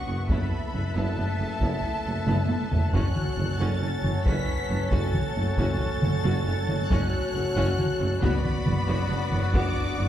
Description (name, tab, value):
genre	cinematic, epic orchestral film score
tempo	91 BPM (dotted quarters)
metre	12/8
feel	straight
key	F# minor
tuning	A4 = 440 Hz
part	warm symphonic violin section	melody	0.0-10.1 s	A5 to B6	-35 LUFS	left 2 dB	none
part	rich symphonic violin section	second line	0.0-10.1 s	F#4 to F#5	-36 LUFS	left 1 dB	none
part	clear woodwind section	sustained chords	0.0-10.1 s	B3 to F#5	-37 LUFS	left 1 dB	none
part	dark French horn section	sustained chords	0.0-10.1 s	A3 to B4	-35 LUFS	equal	none
part	warm symphonic viola section	accompaniment	0.1-10.1 s	F#3 to F#4	-36 LUFS	equal	none
part	rich studio double bass section	bass	0.1-10.1 s	F#1	-31 LUFS	right 1 dB	none
part	rich symphonic cello section	bass	0.1-10.1 s	F#2	-31 LUFS	equal	none
part	warm tuba	bass	0.1-10.1 s	F#1	-34 LUFS	right 2 dB	none
part	taiko ensemble	drums	0.3-9.9 s	none	-28 LUFS	equal	none
room	wet recital hall reverb, RT60 1.4 s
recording	heard from further back in the room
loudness	-23 LUFS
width	side -11 dB against mid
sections	0.0-10.1 A section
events	drum fill 2.3-2.9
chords	0.3 Esus4/F#; 2.9 F#m; 8.2 Bm/F#